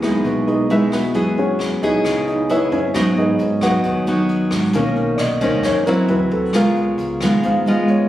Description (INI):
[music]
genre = bossa nova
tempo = 134 BPM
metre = 4/4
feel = straight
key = G# minor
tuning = A4 = 439 Hz
[part]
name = nylon-string guitar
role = accompaniment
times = 0.0-8.1 s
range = F#2 to G#4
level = -18 LUFS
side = equal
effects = none
[part]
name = warm baby grand piano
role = accompaniment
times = 0.0-8.1 s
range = D#3 to F#5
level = -20 LUFS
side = right 1 dB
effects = none
[part]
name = upright bass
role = bass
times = 0.0-8.1 s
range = G#1 to G#2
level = -29 LUFS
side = right 1 dB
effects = none
[part]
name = jazz brush drum kit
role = drums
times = 0.0-8.0 s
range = hi-hat, kick drum, rim click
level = -30 LUFS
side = equal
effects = none
[sound]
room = moderate plate reverb, RT60 1.2 s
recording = recorded on a phone in the room, studio reverb, compression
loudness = -15 LUFS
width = side -13 dB against mid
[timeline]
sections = 0.0-8.1 A section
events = grand piano solo 0.0-8.1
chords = 0.0 Emaj7; 1.1 F#9sus4; 2.9 G#m7; 4.7 Bmaj9; 6.1 D9; 6.5 C#7